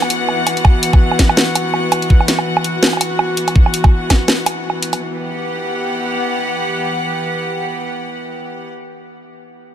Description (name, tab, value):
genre	half-time drum and bass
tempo	165 BPM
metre	4/4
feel	swing 57% on 16ths, half-time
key	E minor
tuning	A4 = 440 Hz
part	clear studio string section	sustained chords	0.0-8.7 s	E3 to F#5	-19 LUFS	left 1 dB	sidechain pumping
part	drum and bass drum kit	drums	0.0-5.0 s	hi-hat, snare drum, woodblock	-17 LUFS	right 2 dB	none
part	electronic kick drum	drums	0.6-4.2 s	none	-10 LUFS	equal	none
room	light reverb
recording	none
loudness	-14 LUFS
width	side -10 dB against mid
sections	0.0-5.0 A section; 5.0-7.9 B section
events	none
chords	0.0 Esus2; 5.0 Emadd9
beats	0.28 | 0.65 1.01 1.37 1.74 | 2.10 2.46 2.83 3.19 | 3.56 3.92 4.28 4.65 | 5.01 5.37 5.74 6.10 | 6.46 6.83 7.19 7.56